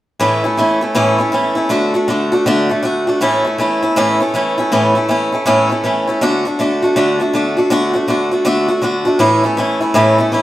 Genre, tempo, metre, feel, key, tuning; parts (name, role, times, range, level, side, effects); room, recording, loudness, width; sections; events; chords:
rock; 160 BPM; 4/4; swing 64% on 8ths; A major; A4 = 437 Hz
picked swing-style acoustic guitar; solo; 0.2-10.4 s; A2 to F#4; -12 LUFS; equal
moderate stone room reverb, RT60 1.2 s; band playing live in one room; -12 LUFS; side -14 dB against mid
0.2-10.4 A section
0.2 A; 1.7 D; 3.2 A; 6.2 D; 9.2 A